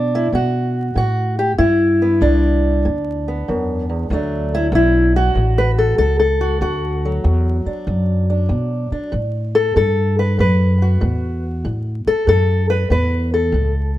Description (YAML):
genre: acoustic country blues, solo or duo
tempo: 96 BPM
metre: 4/4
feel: swing 67% on 8ths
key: D major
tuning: A4 = 440 Hz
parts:
  - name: fingerpicked old ladder-braced acoustic guitar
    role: melody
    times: 0.0-14.0 s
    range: D2 to B4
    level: -18 LUFS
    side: left 1 dB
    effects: plate reverb
  - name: upright bass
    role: bass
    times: 0.0-14.0 s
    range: A1 to B2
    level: -18 LUFS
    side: equal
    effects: none
room: light reverb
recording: dark, warm production, vinyl crackle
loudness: -15 LUFS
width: side -14 dB against mid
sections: 0.0-14.0 A section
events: none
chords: 0.0 G; 4.1 D; 9.1 A